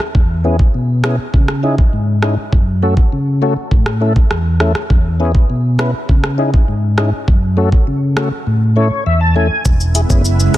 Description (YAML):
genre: dancehall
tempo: 101 BPM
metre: 4/4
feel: straight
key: E major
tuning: A4 = 440 Hz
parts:
  - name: afro-pop drum kit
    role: drums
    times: 0.0-10.6 s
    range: hi-hat, kick drum, rim click, shaker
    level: -14 LUFS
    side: equal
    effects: soft clipping on snare
  - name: mellow tonewheel organ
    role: accompaniment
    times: 0.2-10.6 s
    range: E2 to A5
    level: -14 LUFS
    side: left 1 dB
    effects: overdrive, chorus vibrato, slow rotary speaker
  - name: ethereal airy pad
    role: sustained chords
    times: 9.9-10.6 s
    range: C#3 to E4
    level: -18 LUFS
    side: right 2 dB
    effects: ensemble chorus, built-in reverb, sidechain pumping
  - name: picked electric bass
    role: bass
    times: 9.7-10.6 s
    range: E1 to G#1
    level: -14 LUFS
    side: equal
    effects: none
room: light reverb, digital ambience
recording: dense, heavily limited modern master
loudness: -12 LUFS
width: side -14 dB against mid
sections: 0.0-9.7 A section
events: drums muted 8.5-9.7; tonewheel organ fill 8.5-9.7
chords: 0.1 E6; 1.3 C#madd9; 2.5 F#m; 3.7 A; 4.9 E6; 6.1 C#madd9; 7.3 F#m; 8.5 A; 9.7 E6